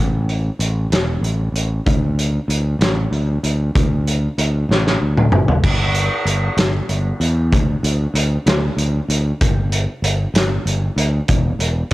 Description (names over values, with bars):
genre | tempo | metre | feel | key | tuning
quiet-loud alternative rock | 64 BPM (dotted quarters) | 6/8 | straight | unclear | A4 = 438 Hz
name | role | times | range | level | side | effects
growling fingered electric bass | bass | 0.0-11.9 s | E1 to E2 | -18 LUFS | equal | overdrive
loose indie drum kit | drums | 0.3-11.9 s | crash cymbal, hi-hat, kick drum, snare drum, toms | -18 LUFS | equal | cassette tape
room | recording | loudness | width
little or no reverb | home recording on cassette | -15 LUFS | side -18 dB against mid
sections
0.0-5.6 A section; 5.6-11.9 B section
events
drum fill 4.7-5.6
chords
none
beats
0.91 | 1.86 2.80 | 3.75 4.69 | 5.64 6.58 | 7.52 8.47 | 9.41 10.35 | 11.29